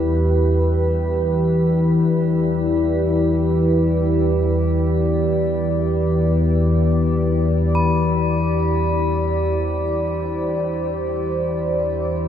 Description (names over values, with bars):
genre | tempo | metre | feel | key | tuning
dark ambient drone | free time | none | none | E minor | A4 = 436 Hz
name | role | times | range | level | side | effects
deep dark ambient pad | sustained chords | 0.0-12.3 s | E4 to D5 | -21 LUFS | right 1 dB | chorus, built-in reverb, shimmer reverb
analog drone | drone | 0.0-12.3 s | E2 to E3 | -19 LUFS | left 1 dB | chorus
bronze singing bowl | texture | 7.8-12.3 s | B5 | -27 LUFS | left 3 dB | shimmer reverb
room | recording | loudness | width
wet cathedral reverb, RT60 5.8 s | in a vast, echoing space | -17 LUFS | side -9 dB against mid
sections
0.0-12.3 A section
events
filter sweep on synth drone 0.0-12.3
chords
0.0 Em; 7.8 C/E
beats
free time